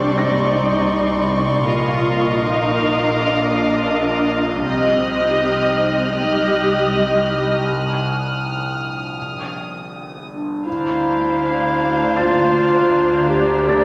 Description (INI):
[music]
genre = cinematic, suspense film score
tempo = 80 BPM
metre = 4/4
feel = straight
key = C minor, D minor from 10.7 s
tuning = A4 = 440 Hz
[part]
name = rich chamber violin section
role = melody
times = 0.0-13.8 s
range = D5 to F5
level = -25 LUFS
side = equal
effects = none
[part]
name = rich chamber viola section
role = accompaniment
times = 0.0-13.8 s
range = G3 to F5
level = -25 LUFS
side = equal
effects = none
[part]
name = ethereal airy pad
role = sustained chords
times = 0.3-13.8 s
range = Eb4 to Eb6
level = -31 LUFS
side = equal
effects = none
[part]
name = warm chamber cello section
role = bass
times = 0.0-13.8 s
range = D2 to F4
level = -26 LUFS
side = equal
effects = none
[part]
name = warm chamber double bass section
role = bass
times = 0.0-13.8 s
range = Bb1 to D2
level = -28 LUFS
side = equal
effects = none
[part]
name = overtone-sweeping drone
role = drone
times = 0.1-13.8 s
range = G1 to D2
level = -29 LUFS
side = equal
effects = chorus, built-in reverb
[part]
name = felt-muted upright piano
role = texture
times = 0.0-4.7, 12.2-13.8 s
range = Ab5 to Bb6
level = -34 LUFS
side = equal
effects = none
[part]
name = rich chamber violin section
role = texture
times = 0.0-13.8 s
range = A5 to F#6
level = -30 LUFS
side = equal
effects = none
[part]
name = bright clarinet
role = second line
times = 10.3-13.8 s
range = D4 to G4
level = -19 LUFS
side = equal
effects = none
[sound]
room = wet scoring stage reverb, RT60 1.7 s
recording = none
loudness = -18 LUFS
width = mono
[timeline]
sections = 0.0-10.7 A section; 10.7-13.8 B section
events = break 7.7-10.7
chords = 0.0 Cmadd9; 1.7 Bbsus4; 4.7 Cm; 7.7 Bbsus4; 9.2 Ebmaj7/G; 10.7 Dm7